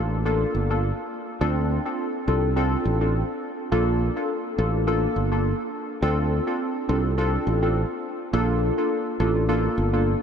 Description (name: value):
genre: afrobeats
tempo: 104 BPM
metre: 4/4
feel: swing 55% on 16ths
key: D minor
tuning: A4 = 440 Hz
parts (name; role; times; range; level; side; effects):
- glassy digital keys; accompaniment; 0.0-10.1 s; Bb3 to A4; -24 LUFS; equal; chorus
- fingered electric bass; bass; 0.0-10.1 s; G1 to D2; -23 LUFS; equal; none
room: wet huge ambient reverb, RT60 7.9 s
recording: dreamy mix soaked in reverb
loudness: -22 LUFS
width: side -7 dB against mid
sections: 0.0-6.0 A section; 6.0-10.2 B section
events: none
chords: 0.0 Bbmaj7; 1.4 Dm7; 3.7 Bbmaj7; 6.0 Dm7; 8.3 Bbmaj7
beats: 0.26 0.83 | 1.41 1.99 2.56 3.14 | 3.72 4.30 4.87 5.45 | 6.03 6.60 7.18 7.76 | 8.33 8.91 9.49 10.06